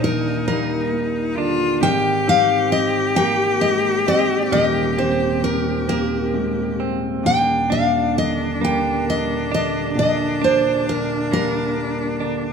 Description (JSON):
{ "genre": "acoustic folk-pop ballad", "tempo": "44 BPM (dotted quarters)", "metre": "6/8", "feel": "straight", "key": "Eb major", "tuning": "A4 = 445 Hz", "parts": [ { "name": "picked steel-string acoustic guitar", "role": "melody", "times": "0.0-12.3 s", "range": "Bb4 to G5", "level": "-21 LUFS", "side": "equal", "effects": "none" }, { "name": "bright cello", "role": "second line", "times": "0.0-12.5 s", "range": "D4 to G4", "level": "-24 LUFS", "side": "left 3 dB", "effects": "none" }, { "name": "dark baby grand piano", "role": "accompaniment", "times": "0.0-12.5 s", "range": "Eb1 to G4", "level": "-23 LUFS", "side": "left 1 dB", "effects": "none" }, { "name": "direct-recorded clean electric guitar", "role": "arpeggios", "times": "0.0-12.5 s", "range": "Eb3 to D4", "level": "-26 LUFS", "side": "right 7 dB", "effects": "tremolo" } ], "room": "moderate studio reverb, RT60 0.9 s", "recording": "minimal, uncompressed stereo recording", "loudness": "-17 LUFS", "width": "side -6 dB against mid", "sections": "0.0-12.5 A section", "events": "none", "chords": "0.0 Ebmaj7; 1.8 Abmaj9; 7.2 Ebmaj7" }